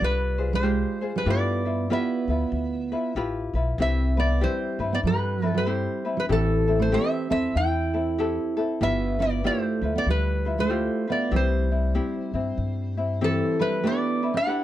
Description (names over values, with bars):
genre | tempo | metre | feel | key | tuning
Hawaiian | 95 BPM | 4/4 | swing 61% on 8ths | C major | A4 = 438 Hz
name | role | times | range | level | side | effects
metal-body resonator slide guitar | melody | 0.0-14.6 s | A4 to G5 | -28 LUFS | left 2 dB | none
fingerpicked steel-string acoustic guitar | second line | 0.0-14.6 s | E3 to E4 | -27 LUFS | right 6 dB | none
ukulele | accompaniment | 0.0-14.6 s | C4 to C5 | -29 LUFS | left 5 dB | none
upright bass | bass | 0.0-13.4 s | G1 to G2 | -26 LUFS | left 1 dB | none
room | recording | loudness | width
light reverb | dry, close 1970s-style studio recording | -22 LUFS | side -13 dB against mid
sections
0.0-13.8 A section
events
none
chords
0.0 Fmadd9; 1.3 G13; 3.8 Cmaj7; 6.3 Am7; 8.8 G6; 11.3 C; 13.8 G6